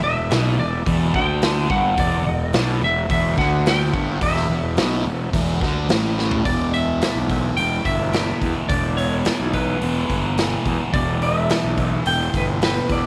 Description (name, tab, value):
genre	psychedelic rock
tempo	107 BPM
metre	4/4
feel	straight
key	E minor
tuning	A4 = 440 Hz
part	clean lap steel guitar	melody	0.0-13.1 s	B4 to G5	-27 LUFS	equal	tape echo
part	thick fuzz guitar	riff	0.0-13.1 s	E2 to E3	-26 LUFS	equal	distortion, phaser
part	fuzz fingered electric bass	bass	0.0-13.0 s	E1 to E2	-26 LUFS	equal	overdrive
part	raw garage drum kit	drums	0.3-13.0 s	hi-hat, kick drum, snare drum, toms	-26 LUFS	equal	none
room	moderate spring reverb, RT60 2.4 s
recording	none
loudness	-20 LUFS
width	mono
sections	0.0-6.5 A section; 6.5-13.1 B section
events	drum fill 6.2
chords	0.0 Em7; 6.5 Em